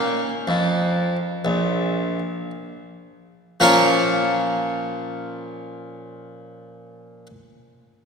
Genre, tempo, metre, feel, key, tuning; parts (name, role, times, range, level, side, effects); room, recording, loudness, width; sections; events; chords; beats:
classical, baroque-style suite movement for harpsichord; 53-63 BPM; 4/4; rubato; Bb minor; A4 = 439 Hz
harpsichord; solo; 0.0-7.3 s; Bb1 to Db5; -20 LUFS; equal
wet church reverb, RT60 2.7 s; minimal, uncompressed stereo recording; -19 LUFS; side -5 dB against mid
0.0-3.6 A section; 3.6-7.9 B section
slowing down 0.0-3.6
0.0 Bbm
0.48 1.46 2.51 | 3.61 4.66 5.72 6.78